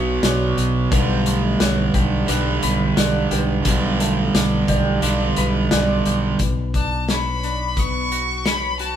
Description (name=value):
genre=post-rock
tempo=88 BPM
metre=4/4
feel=straight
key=B minor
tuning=A4 = 445 Hz
part: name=semi-hollow electric guitar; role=arpeggios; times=0.0-9.0 s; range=B2 to C#5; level=-28 LUFS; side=left 7 dB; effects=phaser
part: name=cranked stack guitar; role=riff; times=0.0-6.4 s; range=G2 to B3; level=-20 LUFS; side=right 4 dB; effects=overdrive
part: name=fingered electric bass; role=bass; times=0.0-9.0 s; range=B1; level=-23 LUFS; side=left 1 dB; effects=none
part: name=felt-muted upright piano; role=arpeggios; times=0.2-6.4 s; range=B4 to E5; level=-29 LUFS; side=right 2 dB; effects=none
part: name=loose indie drum kit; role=drums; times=0.2-9.0 s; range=hi-hat, kick drum, snare drum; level=-22 LUFS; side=left 1 dB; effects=none
part: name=bright violin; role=melody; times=6.8-9.0 s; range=A5 to C#6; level=-24 LUFS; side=left 1 dB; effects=none
room=wet stone room reverb, RT60 1.3 s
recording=band playing live in one room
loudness=-17 LUFS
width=side -10 dB against mid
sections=0.0-6.4 A section; 6.4-9.0 B section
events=none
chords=0.0 Bmadd9; 0.9 Gadd9/B; 6.4 Bmadd9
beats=0.24 | 0.92 1.61 2.29 2.97 | 3.66 4.34 5.03 5.71 | 6.40 7.08 7.77 8.46